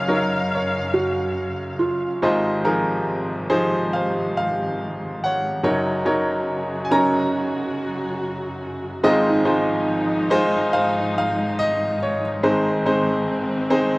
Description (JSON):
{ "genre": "acoustic folk-pop ballad", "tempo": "70 BPM", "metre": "4/4", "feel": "straight", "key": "Ab mixolydian", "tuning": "A4 = 442 Hz", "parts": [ { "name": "bright concert grand piano", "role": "melody", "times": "0.0-14.0 s", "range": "Gb1 to Bb5", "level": "-20 LUFS", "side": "equal", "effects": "none" }, { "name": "warm symphonic string section", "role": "sustained chords", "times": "0.0-14.0 s", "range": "Gb2 to F5", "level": "-28 LUFS", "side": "left 1 dB", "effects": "none" }, { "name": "felt-muted upright piano", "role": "arpeggios", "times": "0.9-12.2 s", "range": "C4 to Gb4", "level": "-25 LUFS", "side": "right 2 dB", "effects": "none" } ], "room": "little or no reverb", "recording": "recorded outdoors, with no room sound", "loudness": "-19 LUFS", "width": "side -23 dB against mid", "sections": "0.0-14.0 A section", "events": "none", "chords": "0.0 Ebm7/Gb; 2.2 Ab6; 5.6 Ebm7/Gb; 9.0 Ab6; 12.4 Ab" }